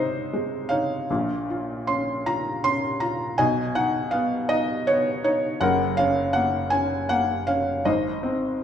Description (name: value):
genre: classical, lyrical solo piano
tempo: 54 BPM (dotted quarters)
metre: 6/8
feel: rubato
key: unclear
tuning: A4 = 441 Hz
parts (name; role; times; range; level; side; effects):
- felt-muted upright piano; solo; 0.0-8.6 s; Gb1 to C6; -22 LUFS; equal; none
room: wet recital hall reverb, RT60 1.5 s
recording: recorded in a church or concert hall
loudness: -22 LUFS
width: side -9 dB against mid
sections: 0.0-8.6 A section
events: none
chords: 0.0 Ab; 1.1 Bbm; 3.4 Cb; 5.6 Gb; 7.8 Ab